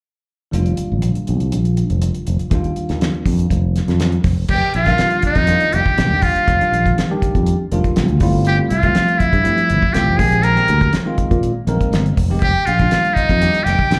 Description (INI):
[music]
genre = electric jazz fusion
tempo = 121 BPM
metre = 4/4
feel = straight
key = F dorian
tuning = A4 = 441 Hz
[part]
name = bell-like tine electric piano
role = accompaniment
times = 0.5-14.0 s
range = Eb3 to Bb4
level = -24 LUFS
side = equal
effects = lush chorus, plate reverb, slapback echo
[part]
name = fingered electric bass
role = bass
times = 0.5-14.0 s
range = F1 to Bb2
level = -20 LUFS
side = equal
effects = none
[part]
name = damped 70s drum kit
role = drums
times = 0.5-14.0 s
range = crash cymbal, hi-hat, kick drum, snare drum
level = -22 LUFS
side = equal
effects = none
[part]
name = trumpet with metal mute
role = melody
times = 4.5-14.0 s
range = Eb4 to Bb4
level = -20 LUFS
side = equal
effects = plate reverb, slapback echo
[part]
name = mellow hollow jazz flute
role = second line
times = 4.5-14.0 s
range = Eb5 to Bb5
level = -25 LUFS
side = equal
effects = plate reverb, slapback echo
[sound]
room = light reverb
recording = live gig heard through the venue's PA, club reverb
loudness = -16 LUFS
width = mono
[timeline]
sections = 0.5-4.5 A section; 4.5-14.0 B section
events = none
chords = 0.5 F13sus4; 4.2 N.C.; 4.5 F13sus4; 8.2 G13sus4; 10.2 Bb13sus4; 12.4 F13sus4